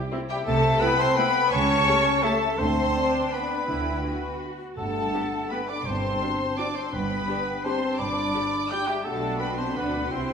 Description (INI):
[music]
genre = classical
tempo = 168 BPM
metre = 3/4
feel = uneven beats, rubato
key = G major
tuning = A4 = 442 Hz
[part]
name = rich symphonic violin section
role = melody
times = 0.0-10.3 s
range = G5 to G6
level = -29 LUFS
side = left 4 dB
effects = none
[part]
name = hollow concert flute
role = second line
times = 0.0-10.3 s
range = E5 to D6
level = -32 LUFS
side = left 2 dB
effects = none
[part]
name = mellow cor anglais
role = second line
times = 0.0-10.3 s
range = G4 to G5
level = -30 LUFS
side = right 2 dB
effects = none
[part]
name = rich symphonic violin section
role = second line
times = 0.0-10.3 s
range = G4 to G5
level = -32 LUFS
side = equal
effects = none
[part]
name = warm French horn section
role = sustained chords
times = 0.0-10.3 s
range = G3 to G4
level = -30 LUFS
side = left 3 dB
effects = none
[part]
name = rich symphonic viola section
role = accompaniment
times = 0.1-10.3 s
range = A3 to G4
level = -34 LUFS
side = right 1 dB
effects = none
[part]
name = warm studio double bass section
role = bass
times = 0.5-10.3 s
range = G1 to D2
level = -32 LUFS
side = right 2 dB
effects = none
[part]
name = warm symphonic cello section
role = bass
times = 0.5-10.3 s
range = G2 to D3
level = -33 LUFS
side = right 2 dB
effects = none
[part]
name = timpani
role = percussion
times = 3.7-7.4 s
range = G2 to D3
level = -44 LUFS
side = left 1 dB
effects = none
[sound]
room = wet recital hall reverb, RT60 1.6 s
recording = recorded in a church or concert hall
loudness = -22 LUFS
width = side -6 dB against mid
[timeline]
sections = 0.0-10.3 A section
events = none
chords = 0.5 Am/C; 1.5 A7/C#; 2.6 G/D; 3.7 D; 4.8 G; 5.9 D7/G; 6.9 G; 9.0 Bm